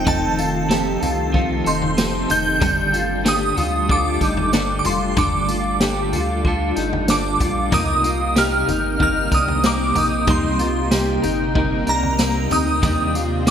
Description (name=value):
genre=dream pop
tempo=94 BPM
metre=4/4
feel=straight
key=C dorian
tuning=A4 = 442 Hz
part: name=shimmering bell with halo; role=melody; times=0.0-13.5 s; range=A5 to G6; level=-22 LUFS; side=right 2 dB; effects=ensemble chorus, shimmer reverb, digital delay
part: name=clean electric guitar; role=accompaniment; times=0.0-13.5 s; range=G2 to Bb4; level=-25 LUFS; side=right 2 dB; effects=tremolo, lush chorus, shimmer reverb
part: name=ethereal airy pad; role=sustained chords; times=0.0-13.5 s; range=C3 to G4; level=-26 LUFS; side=equal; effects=ensemble chorus, built-in reverb, shimmer reverb
part: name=mellow electric guitar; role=arpeggios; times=0.0-13.5 s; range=C4 to G4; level=-25 LUFS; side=left 4 dB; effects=ensemble chorus, shimmer reverb, digital delay
part: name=saturated sub bass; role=bass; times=0.0-13.5 s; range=F1 to Eb2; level=-26 LUFS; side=equal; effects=none
part: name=vintage drum kit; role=drums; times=0.1-13.5 s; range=kick drum, snare drum, tambourine, toms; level=-23 LUFS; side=equal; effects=gated reverb
room=moderate plate reverb, RT60 1.9 s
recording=bright 1980s-style digital production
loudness=-16 LUFS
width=side -8 dB against mid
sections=0.0-13.5 A section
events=none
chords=0.0 F7; 2.6 Gsus2; 7.7 Cm7; 12.8 Ebmaj7